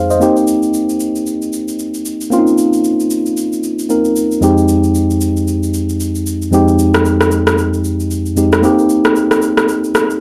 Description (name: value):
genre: amapiano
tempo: 114 BPM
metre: 4/4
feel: swing 58% on 16ths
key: F minor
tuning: A4 = 439 Hz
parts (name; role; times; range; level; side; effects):
- tine electric piano; accompaniment; 0.0-10.2 s; F2 to F5; -15 LUFS; equal; none
- electronic shaker and rim click; drums; 0.1-10.2 s; none; -20 LUFS; equal; overdrive
room: light reverb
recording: none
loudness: -14 LUFS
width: mono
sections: 0.0-10.2 A section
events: none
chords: 0.2 Cm7; 4.4 Fm9; 8.6 Cm7